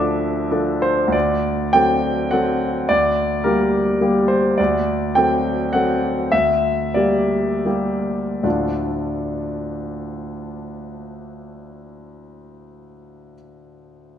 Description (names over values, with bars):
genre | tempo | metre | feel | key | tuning
classical, romantic character piece for solo piano | 72-109 BPM | 3/4 | rubato | D minor | A4 = 442 Hz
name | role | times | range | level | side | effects
warm concert grand piano | solo | 0.0-14.2 s | D2 to E6 | -18 LUFS | equal | none
room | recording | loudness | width
wet recital hall reverb, RT60 1.9 s | minimal, uncompressed stereo recording | -17 LUFS | side -9 dB against mid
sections
0.0-1.1 A section; 1.1-8.4 B section; 8.4-12.7 C section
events
slowing down 3.7-8.4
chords
0.0 Dm; 1.1 D7; 2.9 Gm/D; 4.6 D7; 6.3 Gm/D; 8.4 Dm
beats
0.51 | 1.14 1.73 2.31 | 2.89 3.45 4.01 | 4.58 5.16 5.73 | 6.32 6.96 7.66 | 8.44 9.14 9.86 | 10.56 11.26 11.96